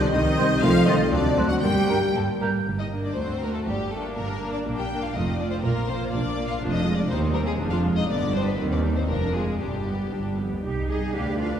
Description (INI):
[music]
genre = quick classical-period movement for symphony orchestra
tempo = 120 BPM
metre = 2/4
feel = rubato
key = G minor, C minor from 6.6 s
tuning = A4 = 440 Hz
[part]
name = clear studio violin section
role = second line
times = 0.0-11.6 s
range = G3 to G5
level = -31 LUFS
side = left 2 dB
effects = none
[part]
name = mellow clarinet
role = second line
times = 0.0-2.1 s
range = D4 to G4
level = -28 LUFS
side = equal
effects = none
[part]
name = dark French horn section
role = sustained chords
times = 0.0-2.4 s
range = Bb3 to A4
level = -27 LUFS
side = left 3 dB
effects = none
[part]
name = rich studio cello section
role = bass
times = 0.0-11.5 s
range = D2 to Ab4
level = -28 LUFS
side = right 2 dB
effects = none
[part]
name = clear studio violin section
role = melody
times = 0.1-11.6 s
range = C4 to G5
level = -33 LUFS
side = left 4 dB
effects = none
[part]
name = rich studio viola section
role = accompaniment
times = 0.1-11.6 s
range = D3 to G4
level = -29 LUFS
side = equal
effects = none
[part]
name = rich studio double bass section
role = bass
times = 0.1-11.6 s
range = F1 to G2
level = -27 LUFS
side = right 2 dB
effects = none
[part]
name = dark cor anglais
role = second line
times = 0.4-2.5 s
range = Bb4 to C5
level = -32 LUFS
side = right 2 dB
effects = none
[part]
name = mellow flute section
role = second line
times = 0.4-2.5 s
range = F#6 to A6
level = -33 LUFS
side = right 3 dB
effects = none
[sound]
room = wet concert hall reverb, RT60 2.4 s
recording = heard from further back in the room, faint mains hum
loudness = -22 LUFS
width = side -9 dB against mid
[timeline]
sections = 0.0-2.7 A section; 2.7-10.6 B section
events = none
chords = 0.0 Cm; 0.6 Adim; 1.1 D7; 1.6 Gm; 3.2 D7; 3.7 Gm; 4.7 Bb; 5.2 F7; 5.6 Bb5; 6.6 Ddim/F; 7.1 Cm/Eb; 7.6 Ddim/F; 8.1 G; 8.6 Cm/Eb; 9.1 Ddim/F; 9.6 G; 10.6 Cm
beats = 0.14 | 0.63 1.12 | 1.63 2.15 | 2.67 3.17 | 3.67 4.17 | 4.66 5.15 | 5.64 6.13 | 6.62 7.10 | 7.59 8.09 | 8.59 9.09 | 9.61 10.13 | 10.65 11.15